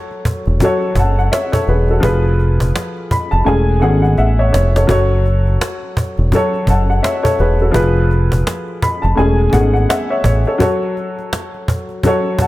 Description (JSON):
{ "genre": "hip hop, boom-bap hip-hop", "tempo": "84 BPM", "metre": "4/4", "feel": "swing 61% on 16ths", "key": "F# minor", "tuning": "A4 = 440 Hz", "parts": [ { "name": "warm upright piano", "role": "accompaniment", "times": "0.0-12.5 s", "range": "F3 to Cb6", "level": "-16 LUFS", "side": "left 1 dB", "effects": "cassette tape, high-pass filter, low-pass filter" }, { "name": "cajon", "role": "drums", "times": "0.1-12.5 s", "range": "none", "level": "-19 LUFS", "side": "equal", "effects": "none" }, { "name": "deep dub fingered electric bass", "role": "bass", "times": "0.5-10.4 s", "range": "E1 to A1", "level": "-13 LUFS", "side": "equal", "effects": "none" } ], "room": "small room ambience", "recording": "none", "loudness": "-13 LUFS", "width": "side -17 dB against mid", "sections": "0.0-12.5 A section", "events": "drum fill 3.5-4.9; break 10.6-12.5", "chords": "0.0 F#m; 2.0 Fdim; 3.5 Amaj7/E; 4.9 F#m; 7.7 Fdim; 9.2 Amaj7/E; 10.6 F#m" }